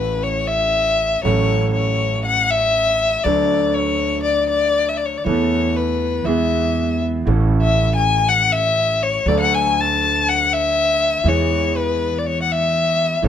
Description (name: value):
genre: tango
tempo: 120 BPM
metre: 4/4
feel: rubato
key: unclear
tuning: A4 = 437 Hz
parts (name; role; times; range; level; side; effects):
- warm violin; second line; 0.0-13.3 s; B4 to A5; -18 LUFS; left 4 dB; none
- clear concert grand piano; accompaniment; 0.0-13.3 s; A1 to A4; -22 LUFS; right 3 dB; none
- upright bass; bass; 0.0-13.3 s; A1 to E2; -24 LUFS; right 1 dB; none
room: moderate studio ambience, RT60 0.5 s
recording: none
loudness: -16 LUFS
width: side -9 dB against mid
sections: 0.0-13.3 A section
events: violin solo 0.0-13.3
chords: 0.0 A; 1.3 F#m/A; 3.3 D; 5.3 Esus4; 6.3 E; 7.3 A; 9.3 D; 11.3 E